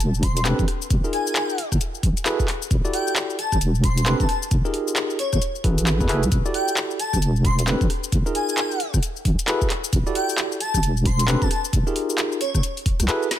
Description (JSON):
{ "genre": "UK garage, two-step garage", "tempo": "133 BPM", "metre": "4/4", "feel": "swing 61% on 16ths", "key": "unclear", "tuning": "A4 = 437 Hz", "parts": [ { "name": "deep soft wobble bass", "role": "bass", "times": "0.0-13.1 s", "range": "E1 to F#2", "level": "-21 LUFS", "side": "equal", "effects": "chorus" }, { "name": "garage drum kit", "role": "drums", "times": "0.0-13.4 s", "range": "handclaps, hi-hat, rim click, shaker, snare drum", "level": "-26 LUFS", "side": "left 2 dB", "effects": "none" }, { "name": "airy dreamy lead", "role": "melody", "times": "0.2-12.6 s", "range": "C#5 to C6", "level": "-28 LUFS", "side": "equal", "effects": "chorus, ping-pong delay" }, { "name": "electronic kick drum", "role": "drums", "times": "0.2-13.0 s", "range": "none", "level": "-23 LUFS", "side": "equal", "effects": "none" }, { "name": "bright tine electric piano", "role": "stabs", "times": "0.5-13.3 s", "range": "C4 to D5", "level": "-26 LUFS", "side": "equal", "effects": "medium stereo tremolo, ping-pong delay" } ], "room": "little or no reverb", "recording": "none", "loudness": "-19 LUFS", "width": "side -12 dB against mid", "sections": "0.0-13.4 A section", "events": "none", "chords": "0.0 Am11; 0.9 Fm7; 1.6 F#m11; 2.7 Em11; 3.4 Am11; 4.5 Fm11; 5.2 F#m11; 6.3 Em11; 7.0 Am11; 8.1 Fm7; 8.8 F#m11; 9.9 Em11; 10.6 Am11; 11.7 Fm11; 12.4 F#m11", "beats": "0.00 0.45 | 0.90 1.35 1.81 2.26 | 2.71 3.16 3.61 4.06 | 4.51 4.96 5.42 5.87 | 6.32 6.77 7.22 7.67 | 8.12 8.57 9.03 9.48 | 9.93 10.38 10.83 11.28 | 11.73 12.18 12.63 13.09" }